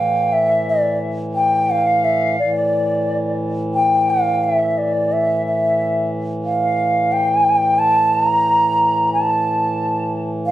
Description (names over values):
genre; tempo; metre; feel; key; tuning
indian classical, Hindustani; 89 BPM; 5/4; straight; A raga bhairavi; A4 = 439 Hz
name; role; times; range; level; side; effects
bright bass bansuri; melody; 0.0-10.5 s; D5 to Bb5; -16 LUFS; equal; plate reverb
mellow hollow silver concert flute; second line; 0.0-10.3 s; D5 to Bb5; -25 LUFS; left 2 dB; none
pedal harmonium; drone; 0.0-10.5 s; A2 to E3; -23 LUFS; equal; none
room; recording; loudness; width
moderate studio reverb, RT60 0.5 s; dark, warm production; -15 LUFS; side -14 dB against mid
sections
0.0-2.4 A section; 2.4-10.5 B section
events
speeding up 0.0-10.5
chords
none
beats
0.32 1.00 1.69 | 2.37 3.06 3.74 4.42 5.09 | 5.77 6.44 7.12 7.79 8.46 | 9.13 9.79 10.46